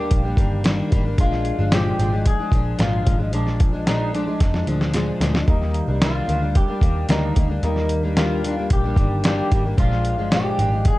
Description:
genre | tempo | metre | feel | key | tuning
indie pop, bedroom pop | 112 BPM | 4/4 | straight | Eb major | A4 = 441 Hz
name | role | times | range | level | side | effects
electric guitar through a small old amp | melody | 0.0-11.0 s | D4 to Ab4 | -27 LUFS | equal | lush chorus, tape echo
fingerpicked plugged-in steel-string acoustic guitar | accompaniment | 0.0-11.0 s | Bb2 to D4 | -24 LUFS | left 2 dB | lush chorus, warbly pitch drift
vintage muted picked electric bass | bass | 0.0-10.9 s | G1 to F2 | -23 LUFS | equal | none
dusty soul sampler-style drum kit | drums | 0.1-11.0 s | hi-hat, kick drum, snare drum | -20 LUFS | equal | none
room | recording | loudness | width
digital ambience | cassette tape | -18 LUFS | side -18 dB against mid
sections
0.0-11.0 A section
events
drum fill 4.4-5.5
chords
0.0 Ebmaj7; 1.2 Bb7; 5.5 Ebmaj7; 9.8 Bb7

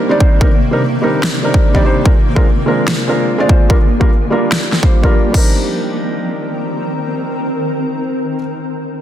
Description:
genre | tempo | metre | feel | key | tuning
future bass | 146 BPM | 4/4 | half-time | C minor | A4 = 440 Hz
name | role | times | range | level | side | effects
felt-muted upright piano | accompaniment | 0.0-8.4 s | G3 to D5 | -17 LUFS | equal | sidechain pumping, dub echo
shimmering ambient pad | sustained chords | 0.0-8.4 s | C3 to Bb4 | -19 LUFS | equal | chorus, built-in reverb, sidechain pumping
electronic kick drum | drums | 0.2-5.4 s | none | -11 LUFS | equal | overdrive
big-room dance drum kit | drums | 1.2-5.4 s | crash cymbal, finger snaps, snare drum | -19 LUFS | left 1 dB | overdrive
room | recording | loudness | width
light reverb, digital ambience | dense, heavily limited modern master | -12 LUFS | side -11 dB against mid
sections
0.0-5.3 A section; 5.3-8.6 B section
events
none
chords
0.0 Cm7; 2.1 Bb7; 3.7 Gm7; 5.3 Cm7

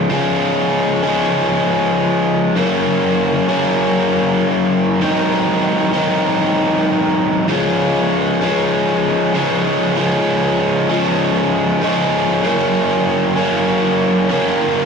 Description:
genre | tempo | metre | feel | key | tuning
rock | 97 BPM | 4/4 | straight | Db major | A4 = 441 Hz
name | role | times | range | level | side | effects
biting overdriven guitar | solo | 0.0-14.9 s | Gb2 to Eb4 | -14 LUFS | equal | none
room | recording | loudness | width
wet small room reverb, RT60 0.5 s | rough rehearsal-room recording, warm saturation | -14 LUFS | side -5 dB against mid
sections
0.0-7.5 A section; 7.5-14.9 B section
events
none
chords
0.0 Db; 2.6 Gb; 5.0 Ab7; 7.5 Db; 12.4 Gb

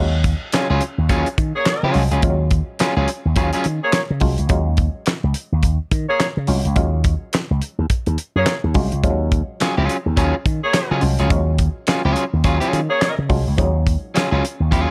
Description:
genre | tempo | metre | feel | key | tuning
funk | 106 BPM | 4/4 | swing 60% on 16ths | Eb dorian | A4 = 440 Hz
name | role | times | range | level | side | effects
muted clav | stabs | 0.0-14.2 s | F3 to F4 | -27 LUFS | equal | phaser, plate reverb
slap bass with an envelope filter | bass | 0.0-14.9 s | C2 to Eb3 | -21 LUFS | equal | none
damped 70s drum kit | drums | 0.2-14.9 s | handclaps, hi-hat, kick drum, snare drum | -23 LUFS | equal | none
electric guitar at the edge of break-up | accompaniment | 0.5-3.7, 9.6-14.9 s | Gb3 to Ab4 | -24 LUFS | equal | plate reverb
mellow horn section | second line | 1.6-13.1 s | Bb3 to Db5 | -23 LUFS | equal | plate reverb
room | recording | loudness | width
light reverb | none | -19 LUFS | mono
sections
0.0-14.9 A section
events
none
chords
0.0 Ebm11

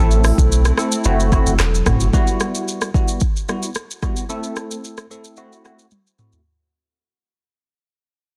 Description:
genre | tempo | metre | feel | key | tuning
afrobeats | 111 BPM | 4/4 | straight | E minor | A4 = 440 Hz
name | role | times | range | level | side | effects
barky tine electric piano | accompaniment | 0.0-6.4 s | G3 to A4 | -25 LUFS | equal | phaser
hollow soft pad | sustained chords | 0.0-2.1 s | F#3 to A4 | -32 LUFS | equal | none
punchy sub bass | bass | 0.0-2.1 s | E1 to B1 | -19 LUFS | equal | none
afro-pop drum kit | drums | 0.1-6.4 s | handclaps, hi-hat, kick drum, rim click, shaker, toms | -21 LUFS | equal | soft clipping on snare
room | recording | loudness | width
digital ambience | dense, heavily limited modern master | -18 LUFS | mono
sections
0.0-2.1 A section; 2.1-6.5 B section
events
fade-out 2.1-6.5; drum fill 5.9-6.5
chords
0.0 Am; 1.1 F#m7b5; 2.1 Emadd9; 4.3 Am; 5.4 F#m7b5

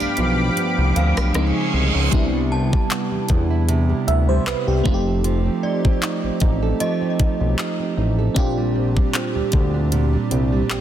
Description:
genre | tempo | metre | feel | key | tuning
contemporary R&B | 77 BPM | 4/4 | swing 54% on 16ths | unclear | A4 = 440 Hz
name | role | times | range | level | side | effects
FM electric piano with soft pad layer | accompaniment | 0.0-10.8 s | F3 to E5 | -24 LUFS | equal | chorus
lush unison pad | sustained chords | 0.0-2.1 s | G4 to D6 | -24 LUFS | left 1 dB | chorus
nylon-string guitar | arpeggios | 0.0-10.8 s | G2 to A4 | -25 LUFS | right 6 dB | ping-pong delay
fat analog bass | bass | 0.0-10.8 s | F1 to E2 | -20 LUFS | left 1 dB | none
trap drum kit | drums | 0.2-10.8 s | handclaps, hi-hat, kick drum, rim click | -21 LUFS | equal | none
reverse cymbal | sound effects | 0.9-2.1 s | none | -28 LUFS | right 5 dB | none
synth chime | texture | 1.0-8.2 s | D5 to A5 | -31 LUFS | left 1 dB | ensemble chorus, ping-pong delay
room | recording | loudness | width
little or no reverb | dense, heavily limited modern master | -17 LUFS | side -10 dB against mid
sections
0.0-2.1 A section; 2.1-10.8 B section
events
break 0.0-2.1; reverse cymbal 0.9-2.1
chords
0.0 G7; 1.4 Dbmaj7; 2.1 Cmaj7; 4.9 F7; 8.4 Bb69

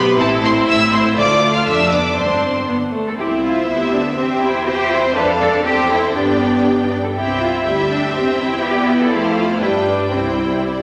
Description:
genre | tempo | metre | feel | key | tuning
quick classical-period movement for string orchestra | 121 BPM | 2/4 | straight | C major | A4 = 440 Hz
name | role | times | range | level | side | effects
warm symphonic violin section | melody | 0.0-10.8 s | A4 to F6 | -25 LUFS | equal | none
rich studio violin section | second line | 0.0-10.8 s | A4 to G5 | -24 LUFS | equal | none
warm symphonic viola section | accompaniment | 0.0-10.8 s | G3 to C5 | -20 LUFS | equal | none
clear symphonic double bass section | bass | 0.0-10.8 s | F1 to G2 | -30 LUFS | equal | none
warm symphonic cello section | bass | 0.0-10.6 s | D2 to C5 | -24 LUFS | equal | none
room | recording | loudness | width
wet scoring stage reverb, RT60 1.7 s | none | -16 LUFS | mono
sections
0.0-3.2 A section; 3.2-10.8 B section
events
none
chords
0.2 Am; 1.2 Dm; 1.7 Dm/F; 2.2 Gsus4; 2.7 G; 3.2 C; 4.2 C/E; 5.2 F; 5.7 C/E; 6.2 G; 7.2 C; 8.1 C/E; 9.1 F; 9.6 G; 10.1 C

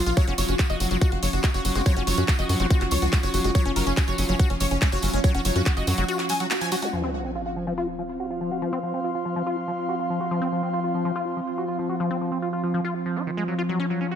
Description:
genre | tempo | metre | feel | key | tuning
psychedelic trance | 142 BPM | 4/4 | straight | unclear | A4 = 440 Hz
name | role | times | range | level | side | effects
evolving wavetable pad | sustained chords | 0.0-14.2 s | F3 to F4 | -30 LUFS | equal | chorus, built-in reverb, sidechain pumping
liquid acid bass | riff | 0.0-14.2 s | Eb3 to Gb4 | -29 LUFS | left 1 dB | chorus, auto-pan, sidechain pumping, tape echo
tight sequencer bass | bass | 0.0-6.0 s | Gb1 to Gb2 | -25 LUFS | equal | none
airy breathy pad | texture | 0.0-14.2 s | C4 to Db6 | -32 LUFS | right 1 dB | chorus, sidechain pumping
supersaw stab | melody | 0.1-6.9 s | Db4 to Ab5 | -29 LUFS | equal | phaser, sidechain pumping, tape echo
garage drum kit | drums | 0.1-6.9 s | handclaps, hi-hat | -31 LUFS | left 1 dB | low-pass filter on hats, low-pass filter on snare
tambourine | percussion | 0.1-6.9 s | none | -35 LUFS | right 5 dB | none
electronic kick drum | drums | 0.2-5.7 s | none | -21 LUFS | equal | none
metallic wobble bass | second line | 1.8-2.8 s | C4 | -40 LUFS | left 3 dB | none
zap and sub drop | sound effects | 6.8-8.6 s | none | -35 LUFS | right 1 dB | none
room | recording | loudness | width
light reverb | none | -22 LUFS | side -9 dB against mid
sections
0.0-6.9 A section; 6.9-14.2 B section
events
drop 0.0-6.9; break 6.1-6.9; band accent 6.5; impact 6.9-8.6; filter sweep on acid bass 6.9-14.2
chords
0.2 Gb5; 6.9 F5

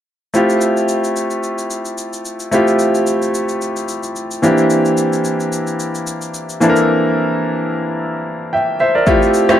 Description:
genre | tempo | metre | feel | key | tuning
amapiano | 110 BPM | 4/4 | swing 55% on 16ths | F major | A4 = 440 Hz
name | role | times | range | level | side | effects
clear grand piano | accompaniment | 0.3-9.6 s | E3 to G5 | -14 LUFS | equal | none
deep house drum kit | drums | 0.3-9.6 s | kick drum, rim click, shaker | -23 LUFS | equal | vintage 12-bit sampler grit
room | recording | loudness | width
light reverb | dark, warm production | -14 LUFS | side -10 dB against mid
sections
0.3-9.1 A section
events
none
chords
0.3 Fmaj9; 4.4 C9/E; 9.1 Fmaj9

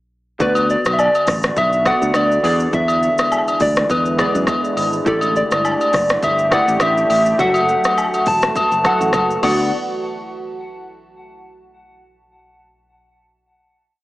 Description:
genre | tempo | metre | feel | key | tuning
afrobeats | 103 BPM | 4/4 | swing 55% on 16ths | D major | A4 = 442 Hz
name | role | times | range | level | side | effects
soft struck synth lead | melody | 0.4-9.7 s | A4 to A5 | -18 LUFS | equal | chorus, tremolo, diffuse ambient delay
warm analog keys | accompaniment | 0.4-9.7 s | D3 to F#5 | -22 LUFS | equal | chorus, phaser
deep dark ambient pad | sustained chords | 1.2-9.7 s | D3 to G4 | -27 LUFS | right 1 dB | chorus, built-in reverb
fingered electric bass | bass | 0.4-9.7 s | E1 to F#2 | -23 LUFS | equal | none
deep house drum kit | drums | 0.4-9.6 s | crash cymbal, hi-hat, kick drum, rim click, shaker | -23 LUFS | equal | none
agogo bells and woodblock | percussion | 0.6-9.7 s | none | -21 LUFS | left 1 dB | none
room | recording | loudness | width
wet plate reverb, RT60 1.9 s | dreamy mix soaked in reverb, small speaker sound | -14 LUFS | side -18 dB against mid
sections
0.4-9.7 chorus; 9.7-12.1 final hit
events
none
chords
0.4 D6; 2.4 E7; 5.1 A7sus4; 7.4 F#m7; 9.4 D6; 9.7 N.C.

